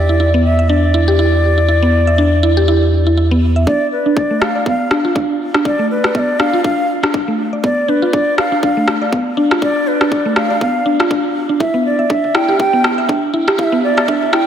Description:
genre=afro house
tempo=121 BPM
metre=4/4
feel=swing 56% on 16ths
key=D dorian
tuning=A4 = 441 Hz
part: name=bright bansuri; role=melody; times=0.0-14.5 s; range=B4 to G5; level=-18 LUFS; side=equal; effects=diffuse ambient delay
part: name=round analog bass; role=bass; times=0.0-3.6 s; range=E2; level=-13 LUFS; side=equal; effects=sidechain pumping
part: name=mallet-like synth pluck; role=arpeggios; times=0.1-14.5 s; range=A3 to E5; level=-16 LUFS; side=equal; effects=chorus, sidechain pumping, diffuse ambient delay
part: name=electronic kick drum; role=drums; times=3.7-14.2 s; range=none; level=-20 LUFS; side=equal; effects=high-pass filter on kick
part: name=afro-pop drum kit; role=drums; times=4.4-14.4 s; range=rim click, toms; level=-19 LUFS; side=equal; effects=high-pass filter on snare, low-pass filter on snare, high-pass filter on toms, low-pass filter on toms
room=wet lush hall reverb, RT60 2.5 s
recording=dreamy mix soaked in reverb, high-pass filter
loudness=-12 LUFS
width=side -9 dB against mid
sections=0.0-3.7 A section; 3.7-14.5 B section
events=build-up 3.7-14.5; filter sweep on synth pluck 3.7-14.5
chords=0.0 E7(no3); 3.7 Dm6; 11.6 Em7

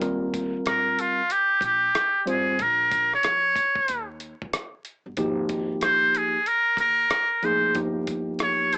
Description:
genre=hip hop, jazz-hop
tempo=93 BPM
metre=4/4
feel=swing 65% on 16ths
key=unclear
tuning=A4 = 442 Hz
part: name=tine electric piano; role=accompaniment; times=0.0-8.8 s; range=F3 to C5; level=-26 LUFS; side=equal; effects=overdrive, fast stereo tremolo, cassette tape
part: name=upright bass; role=bass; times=0.0-8.8 s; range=F1 to F2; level=-39 LUFS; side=equal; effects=none
part: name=dusty soul sampler-style drum kit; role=drums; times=0.0-8.8 s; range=hi-hat, kick drum, rim click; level=-31 LUFS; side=equal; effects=cassette tape
part: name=trumpet with metal mute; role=melody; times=0.7-8.8 s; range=F4 to Db5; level=-20 LUFS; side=equal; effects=cassette tape
room=moderate booth ambience, RT60 0.2 s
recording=home recording on cassette, vinyl crackle, small speaker sound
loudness=-21 LUFS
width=side -33 dB against mid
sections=0.0-8.8 A section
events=none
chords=0.0 Ebadd9; 2.6 Bbm; 3.9 N.C.; 5.2 Ab5; 7.8 F9sus4/G

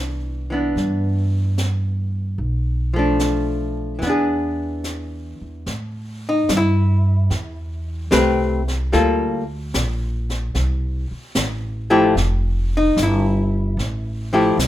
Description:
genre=jazz ballad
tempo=74 BPM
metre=4/4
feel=swing 68% on 8ths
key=A minor from 5.7 s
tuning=A4 = 435 Hz
part: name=archtop guitar, miked and amplified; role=accompaniment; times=0.0-14.6 s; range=E3 to B4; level=-19 LUFS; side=left 1 dB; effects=none
part: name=upright bass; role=bass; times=0.0-14.7 s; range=F1 to A2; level=-21 LUFS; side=equal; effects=none
part: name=jazz brush drum kit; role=drums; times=0.8-14.7 s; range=brushed snare drum, hi-hat, snare drum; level=-26 LUFS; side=equal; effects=none
room=light reverb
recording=minimal, uncompressed stereo recording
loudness=-18 LUFS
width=side -13 dB against mid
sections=0.0-5.7 A section; 5.7-14.7 B section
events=none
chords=0.0 Cmaj9; 2.4 Bm7b5; 4.0 E7; 5.7 Am9; 8.9 Gm9; 10.6 C6; 12.2 Fmaj9

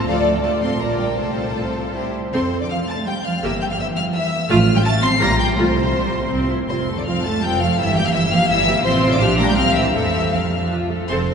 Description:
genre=quick classical-period movement for string orchestra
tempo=153-170 BPM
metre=3/4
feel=rubato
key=F major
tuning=A4 = 440 Hz
part: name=rich studio violin section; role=melody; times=0.0-11.2 s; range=F5 to C7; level=-25 LUFS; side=left 3 dB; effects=none
part: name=rich studio violin section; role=second line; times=0.0-11.3 s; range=G4 to C6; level=-22 LUFS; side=left 2 dB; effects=none
part: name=rich studio viola section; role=accompaniment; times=0.0-11.3 s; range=G3 to A4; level=-22 LUFS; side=equal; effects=none
part: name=dark symphonic cello section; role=bass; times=0.0-11.3 s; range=F2 to C4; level=-24 LUFS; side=right 2 dB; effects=none
part: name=warm studio double bass section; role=bass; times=0.0-11.3 s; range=F1 to F2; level=-23 LUFS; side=right 2 dB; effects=none
room=wet cathedral reverb, RT60 4.8 s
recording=nothing above 10.9 kHz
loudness=-16 LUFS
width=side -6 dB against mid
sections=0.0-2.3 A section; 2.3-11.1 B section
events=none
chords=0.1 Dm; 0.8 Gm7/Bb; 1.2 F/C; 2.0 C; 2.3 F; 3.4 Edim/G; 4.5 F/A; 5.2 Gm7/Bb; 5.6 F/C; 6.3 C; 6.7 F; 7.8 Edim/G; 8.9 F/A; 9.2 Gm7/Bb; 9.6 C; 9.9 F

